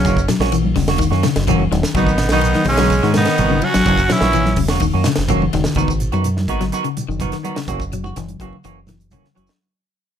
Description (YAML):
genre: afrobeat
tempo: 126 BPM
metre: 4/4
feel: straight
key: unclear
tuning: A4 = 440 Hz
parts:
  - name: raspy tenor saxophone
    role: melody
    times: 0.0-4.6 s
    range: C#4 to F#4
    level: -19 LUFS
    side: left 1 dB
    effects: none
  - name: brilliant trumpet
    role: second line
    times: 0.0-4.6 s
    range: F#3 to C#4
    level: -24 LUFS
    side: right 5 dB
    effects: none
  - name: warm bass trombone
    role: second line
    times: 0.0-4.6 s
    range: C#3 to F#3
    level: -25 LUFS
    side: right 6 dB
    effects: none
  - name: electric guitar at the edge of break-up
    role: arpeggios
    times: 0.0-9.6 s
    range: C#3 to F#3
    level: -21 LUFS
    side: left 9 dB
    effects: none
  - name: semi-hollow electric guitar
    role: stabs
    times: 0.0-9.5 s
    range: D#3 to F#4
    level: -24 LUFS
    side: right 6 dB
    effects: wide subtle chorus
  - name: deep dub fingered electric bass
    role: bass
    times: 0.0-9.5 s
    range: E1 to G#2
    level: -20 LUFS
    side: equal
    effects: none
  - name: tight funk drum kit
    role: drums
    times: 0.0-9.6 s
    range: hi-hat, kick drum, ride cymbal, snare drum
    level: -23 LUFS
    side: right 1 dB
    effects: none
  - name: congas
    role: percussion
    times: 0.1-9.5 s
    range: none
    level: -26 LUFS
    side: right 3 dB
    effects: none
  - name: shekere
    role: percussion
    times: 0.1-9.6 s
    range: none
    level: -28 LUFS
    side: right 3 dB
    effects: none
room: light reverb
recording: none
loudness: -14 LUFS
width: side -9 dB against mid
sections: 0.0-5.8 A section; 5.8-9.6 B section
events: drum fill 5.4-5.8; fade-out 5.8-9.6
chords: 0.1 F#7; 2.0 G#m7; 3.9 F#7; 5.8 G#m7; 7.7 F#7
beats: | 0.05 0.53 1.00 1.48 | 1.96 2.43 2.91 3.38 | 3.86 4.34 4.81 5.29 | 5.77 6.25 6.72 7.20 | 7.68 8.16 8.64 9.12